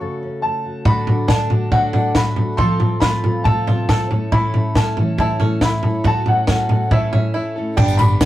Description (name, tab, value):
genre	indie folk with a building arrangement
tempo	139 BPM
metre	4/4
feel	straight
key	unclear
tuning	A4 = 440 Hz
part	clear upright piano	melody	0.0-8.3 s	E5 to C#6	-22 LUFS	equal	none
part	fingerpicked steel-string acoustic guitar	accompaniment	0.0-7.8 s	A2 to C#5	-26 LUFS	equal	none
part	picked steel-string acoustic guitar	accompaniment	0.8-8.3 s	F#2 to A4	-28 LUFS	equal	none
part	bluegrass banjo	arpeggios	0.9-8.2 s	C#4 to A4	-28 LUFS	right 1 dB	none
part	compact cocktail drum kit	drums	0.9-8.3 s	crash cymbal, kick drum, snare drum, toms	-16 LUFS	equal	none
part	fingered electric bass	bass	7.8-8.3 s	G1 to A1	-19 LUFS	equal	none
part	tambourine	percussion	7.9-8.3 s	none	-36 LUFS	left 1 dB	none
room	moderate booth ambience, RT60 0.2 s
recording	rough rehearsal-room recording, tube saturation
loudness	-15 LUFS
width	side -14 dB against mid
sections	0.0-7.8 A section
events	break 7.3-7.8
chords	0.0 F#m; 0.9 D; 2.6 F; 4.1 A; 6.1 F#m; 6.9 A